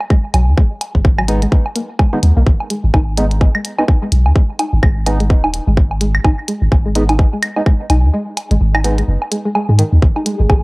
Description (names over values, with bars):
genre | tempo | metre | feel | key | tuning
minimal techno | 127 BPM | 4/4 | swing 58% on 16ths | G# minor | A4 = 440 Hz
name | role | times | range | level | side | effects
woodblock | percussion | 0.0-10.6 s | none | -22 LUFS | right 1 dB | cassette tape, analog delay
string-like resonator pluck | riff | 0.1-10.3 s | D#3 to D#4 | -22 LUFS | equal | chorus, sidechain pumping, cassette tape, tape echo
electronic kick drum | drums | 0.1-10.6 s | none | -12 LUFS | equal | cassette tape
punchy sub bass | bass | 0.3-10.6 s | D#1 to G#2 | -13 LUFS | equal | sidechain pumping
electronic hi-hat | drums | 0.3-10.4 s | none | -23 LUFS | equal | cassette tape
percussive organ stab | stabs | 1.3-9.0 s | G#3 to D#4 | -21 LUFS | right 1 dB | lush chorus, cassette tape, analog delay
flickering grainy texture | texture | 10.3-10.6 s | G#3 to G#4 | -22 LUFS | left 1 dB | built-in reverb, sidechain pumping, cassette tape
room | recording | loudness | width
light reverb | home recording on cassette | -12 LUFS | side -26 dB against mid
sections
0.0-10.6 A section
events
filter sweep on synth pluck 0.0-10.6; kick drops out 8.1-10.0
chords
0.0 G#m